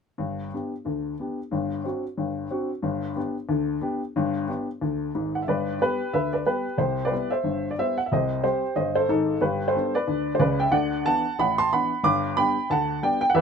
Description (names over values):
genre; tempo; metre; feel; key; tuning
jazz, stride piano; 182 BPM; 4/4; swing 59% on 8ths; G major; A4 = 443 Hz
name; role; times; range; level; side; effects
clear upright piano; solo; 0.2-13.4 s; G1 to D6; -23 LUFS; equal; none
room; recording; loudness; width
moderate booth ambience, RT60 0.2 s; minimal, uncompressed stereo recording; -23 LUFS; side -6 dB against mid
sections
0.2-5.5 A section; 5.5-13.4 B section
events
none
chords
0.2 G; 1.5 D7/G; 2.8 G; 6.8 Cmaj7; 8.1 Cm; 9.4 G; 10.7 D69; 12.0 G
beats
| 0.19 0.52 0.85 1.18 | 1.51 1.84 2.17 2.50 | 2.83 3.16 3.49 3.82 | 4.15 4.48 4.81 5.14 | 5.47 5.80 6.12 6.45 | 6.78 7.11 7.44 7.77 | 8.10 8.43 8.75 9.08 | 9.41 9.74 10.07 10.40 | 10.72 11.05 11.38 11.71 | 12.04 12.37 12.70 13.02 | 13.35